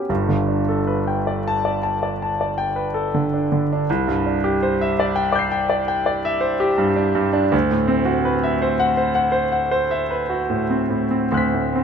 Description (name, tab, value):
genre	classical, impressionist solo piano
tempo	80 BPM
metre	5/4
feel	uneven beats, rubato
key	G major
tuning	A4 = 440 Hz
part	bright concert grand piano	solo	0.0-11.8 s	G1 to C7	-18 LUFS	equal	none
room	light reverb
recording	close, detailed microphones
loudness	-18 LUFS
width	side -7 dB against mid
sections	0.1-11.8 A section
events	none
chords	0.1 Gadd9; 3.9 Cadd9; 7.5 D13